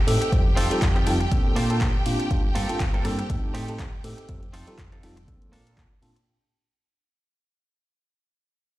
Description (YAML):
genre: filtered disco house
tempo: 121 BPM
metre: 4/4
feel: swing 56% on 16ths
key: unclear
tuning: A4 = 440 Hz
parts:
  - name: clear studio violin section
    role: sustained chords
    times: 0.0-6.3 s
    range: G4 to G5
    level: -32 LUFS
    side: equal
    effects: sidechain pumping
  - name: bell-like tine electric piano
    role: accompaniment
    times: 0.1-6.1 s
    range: G3 to A4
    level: -29 LUFS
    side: equal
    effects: phaser, sidechain pumping
  - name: fingered electric bass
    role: bass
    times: 0.1-6.1 s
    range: F1 to Bb2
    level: -28 LUFS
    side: equal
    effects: sidechain pumping
  - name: punchy analog drum machine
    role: drums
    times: 0.1-6.3 s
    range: handclaps, hi-hat, ride cymbal, rim click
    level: -35 LUFS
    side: equal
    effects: sidechain pumping on hats, sidechain pumping on cymbals
  - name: direct-recorded clean electric guitar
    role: riff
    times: 0.2-6.2 s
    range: Bb3 to C5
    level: -33 LUFS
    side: right 2 dB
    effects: vintage 12-bit sampler grit, sidechain pumping
  - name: electronic kick drum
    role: drums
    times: 0.3-5.9 s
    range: none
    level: -24 LUFS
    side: equal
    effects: none
room: light reverb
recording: played on a big sound system in a bare room, large studio reverb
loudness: -21 LUFS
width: side -16 dB against mid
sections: 0.0-6.3 A section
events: drop 0.0-6.3; fade-out 0.0-6.3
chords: 0.3 F7; 1.3 Bbmaj7; 2.3 Gm11; 3.3 Am7b5; 4.3 F7; 5.3 Bbmaj7